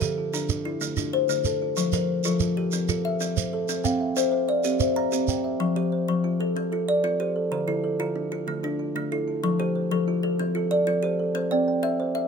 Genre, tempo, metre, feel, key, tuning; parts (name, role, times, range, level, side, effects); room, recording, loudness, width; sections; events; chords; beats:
southern african traditional, mbira-style interlocking cycle; 125 BPM (dotted quarters); 12/8; straight; F major; A4 = 440 Hz
kalimba; arpeggios; 0.0-12.3 s; D3 to Bb5; -25 LUFS; left 3 dB
kalimba; arpeggios; 0.0-12.3 s; D3 to G5; -28 LUFS; right 6 dB
shekere; percussion; 0.0-5.4 s; -30 LUFS; right 9 dB
light reverb; close, detailed microphones; -23 LUFS; side -6 dB against mid
0.0-5.6 A section; 5.6-12.3 B section
0.0 Dm; 1.8 F; 3.7 C; 5.6 F; 7.5 Dm; 9.4 F; 11.4 C
0.33 0.81 1.29 | 1.76 2.24 2.72 3.20 | 3.68 4.16 4.64 5.12 | 5.60 6.08 6.56 7.04 | 7.51 8.00 8.47 8.95 | 9.43 9.91 10.39 10.87 | 11.35 11.83